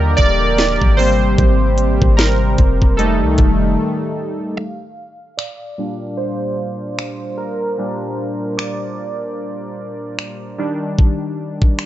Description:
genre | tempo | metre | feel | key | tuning
contemporary R&B | 75 BPM | 4/4 | swing 58% on 16ths | Bb major | A4 = 440 Hz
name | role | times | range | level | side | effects
warm analog keys | accompaniment | 0.0-11.9 s | Bb2 to F5 | -20 LUFS | right 1 dB | chorus, low-pass filter
chorused pulse-width pad | sustained chords | 0.0-4.6 s | C3 to G4 | -22 LUFS | left 1 dB | none
clean 808-style bass | bass | 0.0-3.8 s | Eb1 to Eb2 | -16 LUFS | equal | none
trap drum kit | drums | 0.2-11.9 s | finger snaps, hi-hat, kick drum, snare drum | -15 LUFS | equal | none
room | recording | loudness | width
little or no reverb | nothing above 7.8 kHz | -15 LUFS | side -13 dB against mid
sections
0.0-4.6 A section; 4.6-11.9 B section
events
synth keys solo 0.0-4.6, 4.6-11.9; break 3.8-4.6; filter sweep on synth keys 4.6-11.9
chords
0.0 Ebmaj7; 1.0 Abmaj7; 3.0 F9; 4.6 Bb6; 10.6 Ebmaj7

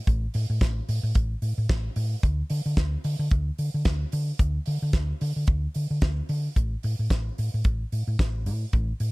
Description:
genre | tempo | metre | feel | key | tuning
disco | 111 BPM | 4/4 | swing 56% on 16ths | unclear | A4 = 440 Hz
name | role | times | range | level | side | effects
hollow-body short-scale fingered electric bass | bass | 0.1-9.1 s | A1 to D3 | -26 LUFS | equal | none
damped 70s drum kit | drums | 0.1-9.1 s | hi-hat, kick drum, snare drum | -26 LUFS | equal | none
room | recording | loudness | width
little or no reverb | none | -24 LUFS | side -24 dB against mid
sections
0.0-6.6 A section; 6.6-9.1 B section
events
none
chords
none

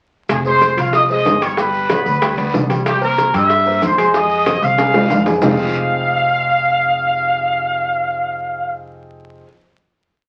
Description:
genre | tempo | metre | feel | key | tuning
latin, salsa | 188 BPM | 4/4 | straight | F minor | A4 = 440 Hz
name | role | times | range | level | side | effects
clear trumpet section | melody | 0.3-8.7 s | G4 to E6 | -18 LUFS | equal | none
upright bass | bass | 0.3-9.4 s | F1 to G2 | -27 LUFS | equal | none
bongos | percussion | 0.3-5.5 s | none | -24 LUFS | equal | none
congas | percussion | 0.3-5.5 s | none | -32 LUFS | equal | none
guiro | percussion | 0.3-5.5 s | none | -36 LUFS | equal | none
maracas | percussion | 0.3-5.5 s | none | -44 LUFS | equal | none
timbales | percussion | 0.3-5.5 s | none | -25 LUFS | equal | none
clear grand piano | accompaniment | 0.5-9.4 s | F3 to Ab5 | -25 LUFS | equal | none
room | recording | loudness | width
wet club reverb, RT60 0.7 s | very old 78 rpm record, vinyl crackle | -16 LUFS | mono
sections
0.3-5.4 A section; 5.4-8.0 final chord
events
drum fill 4.8-5.4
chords
0.3 Fm7; 1.6 G; 2.9 C7; 4.1 Fm7; 5.4 Fm9

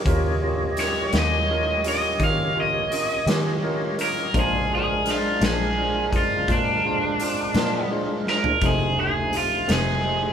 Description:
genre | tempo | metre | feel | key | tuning
slow blues | 56 BPM (dotted quarters) | 12/8 | straight | Bb mixolydian | A4 = 442 Hz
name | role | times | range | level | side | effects
tonewheel organ | sustained chords | 0.0-10.3 s | F3 to Eb5 | -30 LUFS | left 1 dB | slow rotary speaker, overdrive, chorus vibrato
warm concert grand piano | accompaniment | 0.1-10.3 s | Db4 to C5 | -30 LUFS | right 2 dB | none
vintage muted fingered electric bass | bass | 0.1-10.3 s | F1 to Eb3 | -28 LUFS | equal | none
raw garage drum kit | drums | 0.1-9.9 s | hi-hat, kick drum, snare drum, toms | -26 LUFS | equal | none
raw garage guitar | melody | 0.8-10.3 s | D4 to F5 | -23 LUFS | right 1 dB | overdrive
electric guitar through a small old amp | accompaniment | 1.1-9.9 s | F2 to G4 | -30 LUFS | left 4 dB | harmonic tremolo
room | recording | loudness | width
moderate large studio reverb, RT60 0.9 s | band playing live in one room | -20 LUFS | side -8 dB against mid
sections
0.0-10.3 A section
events
drum fill 8.3-8.6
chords
0.0 Eb7; 4.3 Bb7; 8.6 F7

